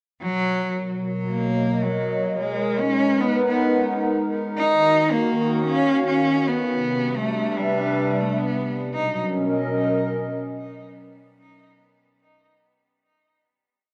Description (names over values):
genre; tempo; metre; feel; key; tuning
IDM; 110 BPM; 4/4; straight; unclear; A4 = 440 Hz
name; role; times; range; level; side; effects
warm cello; melody; 0.2-9.2 s; F#3 to D#4; -25 LUFS; equal; vintage 12-bit sampler grit, digital delay
hollow soft pad; sustained chords; 0.2-11.1 s; B2 to F#5; -26 LUFS; equal; chorus
room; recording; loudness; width
moderate plate reverb, RT60 2.9 s; rough home demo mix; -22 LUFS; mono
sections
0.2-8.9 groove; 8.9-11.1 final chord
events
none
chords
0.2 Bmaj7; 2.4 G#m7; 4.6 D#m7; 6.8 Cmaj7; 8.9 Bmaj7